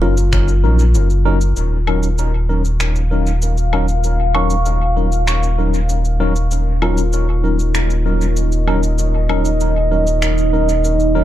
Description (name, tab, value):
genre	ambient dub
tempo	97 BPM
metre	4/4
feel	straight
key	Eb minor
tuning	A4 = 440 Hz
part	kalimba	arpeggios	0.0-9.6 s	F4 to Db6	-27 LUFS	left 2 dB	low-pass filter, dub echo
part	bright tine electric piano	stabs	0.0-11.2 s	Gb3 to Bb4	-22 LUFS	left 2 dB	medium stereo tremolo, low-pass filter, dub echo
part	soft dub sub bass	bass	0.0-11.2 s	Eb1 to Bb1	-16 LUFS	equal	tube saturation
part	electronic cabasa, finger snaps and woodblock	drums	0.2-11.1 s	none	-25 LUFS	left 1 dB	studio reverb, dub echo
part	electronic kick drum	drums	0.3-0.5 s	none	-22 LUFS	equal	none
part	deep dark ambient pad	sustained chords	3.1-11.2 s	Eb4 to F5	-21 LUFS	right 1 dB	chorus, built-in reverb
room	light reverb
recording	none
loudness	-14 LUFS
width	side -13 dB against mid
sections	0.0-1.6 A section; 1.6-11.2 B section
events	filter sweep on kalimba 1.6-11.2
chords	0.0 Ebm7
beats	0.33 0.95 | 1.56 2.18 2.80 3.42 | 4.04 4.66 5.28 5.89 | 6.51 7.13 7.75 8.37 | 8.99 9.61 10.22 10.84